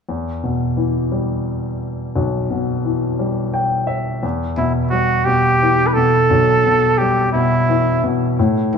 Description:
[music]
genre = pop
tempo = 58 BPM (dotted quarters)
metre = 6/8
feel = straight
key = E minor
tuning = A4 = 439 Hz
[part]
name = clear baby grand piano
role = accompaniment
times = 0.1-8.8 s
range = B1 to G5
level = -17 LUFS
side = left 1 dB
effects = none
[part]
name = trumpet with straight mute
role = melody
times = 4.6-8.8 s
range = E4 to B4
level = -16 LUFS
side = right 2 dB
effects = tape echo
[sound]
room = wet stone room reverb, RT60 1.1 s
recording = band playing live in one room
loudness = -15 LUFS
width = side -6 dB against mid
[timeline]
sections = 0.1-4.2 A section; 4.2-8.8 B section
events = grand piano fill 3.2-4.2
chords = 0.1 Em

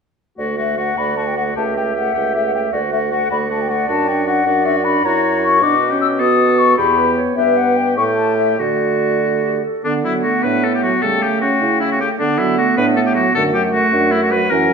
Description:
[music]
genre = quick classical-period movement for wind quintet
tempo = 103 BPM (dotted quarters)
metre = 6/8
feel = rubato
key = D major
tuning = A4 = 441 Hz
[part]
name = mellow concert flute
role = melody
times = 0.4-14.7 s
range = D5 to E6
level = -19 LUFS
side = left 6 dB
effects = none
[part]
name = clear oboe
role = second line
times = 0.4-14.7 s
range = D4 to B4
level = -20 LUFS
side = left 2 dB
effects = none
[part]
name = mellow French horn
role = accompaniment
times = 0.4-14.7 s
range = D3 to E4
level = -22 LUFS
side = left 1 dB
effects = none
[part]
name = mellow bassoon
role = bass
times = 0.4-14.7 s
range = C#2 to D3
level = -21 LUFS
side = right 4 dB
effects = none
[part]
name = warm clarinet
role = accompaniment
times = 1.0-14.7 s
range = A3 to F#5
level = -22 LUFS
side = right 6 dB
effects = none
[sound]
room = wet recital hall reverb, RT60 1.5 s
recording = minimal, uncompressed stereo recording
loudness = -14 LUFS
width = side -5 dB against mid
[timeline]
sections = 0.4-9.8 A section; 9.8-14.7 A section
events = none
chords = 0.4 D; 1.6 A7/C#; 2.7 D; 3.9 D/F#; 5.0 F#7; 5.6 Bm; 6.2 B7; 6.8 Em; 7.4 Gmaj7; 8.0 A7(no3); 8.6 D; 11.0 A7/C#; 12.2 D; 13.4 D/F#

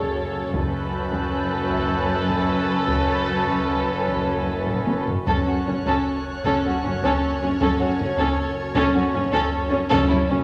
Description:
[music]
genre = cinematic, suspense film score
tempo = 78 BPM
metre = 3/4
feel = straight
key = F# minor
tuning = A4 = 438 Hz
[part]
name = dark studio violin section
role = melody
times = 0.0-10.4 s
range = B4 to C#5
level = -34 LUFS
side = equal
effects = none
[part]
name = warm studio violin section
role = second line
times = 0.0-10.4 s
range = C#4 to A4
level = -28 LUFS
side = equal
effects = none
[part]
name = warm studio viola section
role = accompaniment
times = 0.0-10.4 s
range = C#3 to C#4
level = -27 LUFS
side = equal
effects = none
[part]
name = dark studio double bass section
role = bass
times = 0.0-10.4 s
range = F#1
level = -33 LUFS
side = equal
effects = none
[part]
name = warm studio cello section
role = bass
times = 0.0-10.4 s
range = F#2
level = -31 LUFS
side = equal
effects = none
[part]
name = organ-like drone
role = drone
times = 0.0-10.4 s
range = F#1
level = -37 LUFS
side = equal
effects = none
[part]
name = concert harp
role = texture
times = 0.0-10.4 s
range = B4 to F#6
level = -41 LUFS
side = equal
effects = none
[part]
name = taiko ensemble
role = drums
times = 0.5-10.4 s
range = none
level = -31 LUFS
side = equal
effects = none
[part]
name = dark chamber violin section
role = texture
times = 0.6-9.5 s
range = C#6 to G#6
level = -39 LUFS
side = equal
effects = none
[sound]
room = wet scoring stage reverb, RT60 2.0 s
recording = none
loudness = -22 LUFS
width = mono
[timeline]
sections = 0.0-10.4 A section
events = drum fill 4.7-5.3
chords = 0.0 F#m

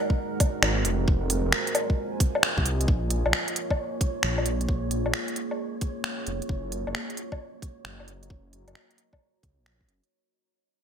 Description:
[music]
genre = future garage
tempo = 133 BPM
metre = 4/4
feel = swing 66% on 16ths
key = Bb minor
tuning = A4 = 440 Hz
[part]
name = deep dark ambient pad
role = sustained chords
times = 0.0-10.1 s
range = Ab3 to Bb5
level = -32 LUFS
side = right 2 dB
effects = chorus, built-in reverb, sidechain pumping
[part]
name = electronic kick drum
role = drums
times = 0.1-9.9 s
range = none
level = -25 LUFS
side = equal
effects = none
[part]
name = organic electronic drum kit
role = drums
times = 0.4-10.1 s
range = finger snaps, hi-hat, woodblock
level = -27 LUFS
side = equal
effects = gated reverb
[part]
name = dark detuned saw bass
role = bass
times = 0.6-10.0 s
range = F1 to Db2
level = -28 LUFS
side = equal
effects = sidechain pumping
[part]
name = wind-like tuned noise texture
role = texture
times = 3.2-10.1 s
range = Db5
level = -40 LUFS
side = right 3 dB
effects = built-in reverb, wide subtle chorus
[sound]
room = light reverb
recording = bright 1980s-style digital production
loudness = -24 LUFS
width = side -8 dB against mid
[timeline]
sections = 0.0-2.9 A section; 2.9-10.1 B section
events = fade-out 2.9-10.1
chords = 0.0 Ab9; 1.1 Fm7; 2.9 Bbm7; 6.5 Gb6

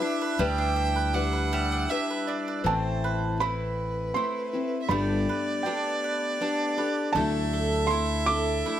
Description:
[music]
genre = folk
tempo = 80 BPM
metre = 3/4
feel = straight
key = A dorian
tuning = A4 = 442 Hz
[part]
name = dark fiddle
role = second line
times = 0.0-8.8 s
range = B4 to G5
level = -30 LUFS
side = right 2 dB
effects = none
[part]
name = picked steel-string acoustic guitar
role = accompaniment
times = 0.0-8.8 s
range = A2 to B4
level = -30 LUFS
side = left 4 dB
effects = none
[part]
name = mandolin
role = arpeggios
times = 0.0-8.8 s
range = G3 to E5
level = -32 LUFS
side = right 4 dB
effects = none
[part]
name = upright bass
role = bass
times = 0.4-8.6 s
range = G1 to D2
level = -29 LUFS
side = equal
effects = none
[part]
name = felt-muted upright piano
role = melody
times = 2.7-8.8 s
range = G5 to D6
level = -31 LUFS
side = right 3 dB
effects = none
[sound]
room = light reverb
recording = none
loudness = -24 LUFS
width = side -10 dB against mid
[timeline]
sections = 0.0-2.6 A section; 2.6-8.8 B section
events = none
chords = 0.0 G6; 2.6 Amadd9; 4.9 Gadd9; 7.2 Dadd9

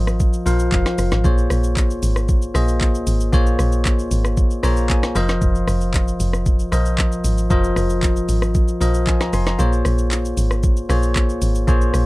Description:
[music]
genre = amapiano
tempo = 115 BPM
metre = 4/4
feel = straight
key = Bb minor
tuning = A4 = 444 Hz
[part]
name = bell-like tine electric piano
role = accompaniment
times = 0.0-12.1 s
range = F3 to C6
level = -22 LUFS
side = left 1 dB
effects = plate reverb
[part]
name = deep log drum bass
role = bass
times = 0.0-12.1 s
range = F1 to Bb1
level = -19 LUFS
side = equal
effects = none
[part]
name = smooth R&B drum kit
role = drums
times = 0.1-12.1 s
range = handclaps, hi-hat, kick drum, rim click, shaker, snare drum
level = -20 LUFS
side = equal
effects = none
[sound]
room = little or no reverb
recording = dark, warm production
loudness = -16 LUFS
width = side -20 dB against mid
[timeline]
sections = 0.0-12.1 A section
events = tine electric piano fill 0.5-1.2, 4.4-5.4; kick muted 9.6-10.6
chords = 0.0 F7sus4; 1.2 Bbm7; 5.2 F7sus4; 9.6 Bbm7

